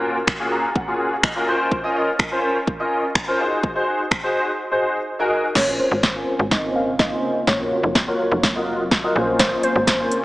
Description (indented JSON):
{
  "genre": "dance-pop",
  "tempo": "125 BPM",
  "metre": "4/4",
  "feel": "straight",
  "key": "Bb minor",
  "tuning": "A4 = 440 Hz",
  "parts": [
    { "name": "clear concert grand piano", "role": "accompaniment", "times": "0.0-10.2 s", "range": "Bb2 to Bb5", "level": "-21 LUFS", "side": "equal", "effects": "ensemble chorus, sidechain pumping, low-pass filter" },
    { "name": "house drum kit", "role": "drums", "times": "0.3-10.2 s", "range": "crash cymbal, finger snaps, hi-hat, kick drum, snare drum", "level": "-21 LUFS", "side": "equal", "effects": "none" },
    { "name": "glassy wavetable pluck", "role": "melody", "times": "5.6-10.1 s", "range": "C5 to F5", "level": "-23 LUFS", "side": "equal", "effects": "chorus, low-pass filter, diffuse ambient delay" },
    { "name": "ethereal airy pad", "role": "sustained chords", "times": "6.2-10.2 s", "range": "Db3 to F4", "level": "-28 LUFS", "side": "right 1 dB", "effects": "ensemble chorus, built-in reverb, sidechain pumping, low-pass filter" },
    { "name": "slap-like FM bass", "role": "bass", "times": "5.6-10.1 s", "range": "F1 to Bb1", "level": "-24 LUFS", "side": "equal", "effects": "sidechain pumping" }
  ],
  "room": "wet lush hall reverb, RT60 2.1 s",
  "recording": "dreamy mix soaked in reverb, small speaker sound",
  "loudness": "-18 LUFS",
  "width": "side -18 dB against mid",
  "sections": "0.0-5.6 A section; 5.6-10.2 B section",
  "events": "grand piano fill 0.3-1.7; silent gap 4.6-5.6; build-up 5.6-10.2; drum fill 5.6-10.2; filter sweep 5.6-10.2",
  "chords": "0.0 Gbmaj7/Bb; 1.5 Bbmadd9; 3.4 Ab7; 5.6 Bbmadd9; 7.5 Gbmaj7; 9.2 Bbmadd9",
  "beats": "0.28 0.76 1.24 | 1.72 2.19 2.67 3.15 | 3.63 4.12 4.59 5.08 | 5.55 6.04 6.51 7.00 | 7.47 7.96 8.44 8.91 | 9.39 9.88"
}